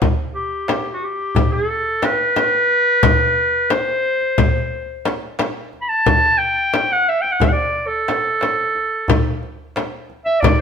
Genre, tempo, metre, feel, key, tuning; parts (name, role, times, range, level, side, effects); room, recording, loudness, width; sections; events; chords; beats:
Turkish makam ensemble; 178 BPM (eighths); 9/8; straight; A makam huseyni; A4 = 440 Hz
darbuka; percussion; 0.0-10.6 s; -23 LUFS; right 1 dB
frame drum; percussion; 0.0-10.6 s; -19 LUFS; left 4 dB
clear clarinet; melody; 0.3-10.6 s; F#4-28c to B5-26c; -17 LUFS; equal
wet stone room reverb, RT60 1.0 s; band playing live in one room; -16 LUFS; side -6 dB against mid
0.0-10.6 A section
| 0.01 0.35 0.69 1.02 1.36 1.70 2.03 2.37 2.70 | 3.04 3.38 3.71 4.05 4.38 4.72 5.06 5.39 5.73 | 6.07 6.40 6.74 7.08 7.41 7.75 8.08 8.42 8.76 | 9.09 9.43 9.77 10.10 10.44